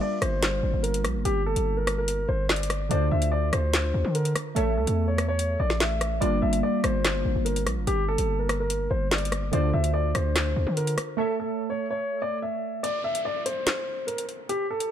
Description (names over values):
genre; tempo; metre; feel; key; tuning
hip hop, drill; 145 BPM; 4/4; half-time; unclear; A4 = 445 Hz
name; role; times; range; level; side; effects
dark baby grand piano; melody; 0.0-14.9 s; G4 to E5; -28 LUFS; equal; low-pass filter, tape echo
glassy digital keys; accompaniment; 0.0-12.9 s; D3 to E5; -31 LUFS; right 2 dB; chorus, low-pass filter
distorted 808-style bass; bass; 0.2-11.0 s; G1 to D3; -26 LUFS; equal; distortion
drill drum kit; drums; 0.2-14.9 s; handclaps, hi-hat, rim click, snare drum; -28 LUFS; left 1 dB; none
downlifter; sound effects; 12.8-14.9 s; none; -40 LUFS; equal; none
room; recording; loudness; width
little or no reverb; dark, warm production; -23 LUFS; side -10 dB against mid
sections
0.0-12.8 A section; 12.8-14.9 B section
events
break 11.2-12.8; kick muted 12.8-14.9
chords
0.0 Gm7; 2.9 Dm7; 4.6 A; 6.2 Gm7; 9.5 Dm7; 11.2 A; 12.8 N.C.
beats
0.01 0.42 0.84 | 1.25 1.67 2.08 2.49 | 2.91 3.32 3.73 4.15 | 4.56 4.98 5.39 5.80 | 6.22 6.63 7.04 7.46 | 7.87 8.29 8.70 9.11 | 9.53 9.94 10.36 10.77 | 11.18 11.60 12.01 12.43 | 12.84 13.25 13.67 14.08 | 14.49 14.91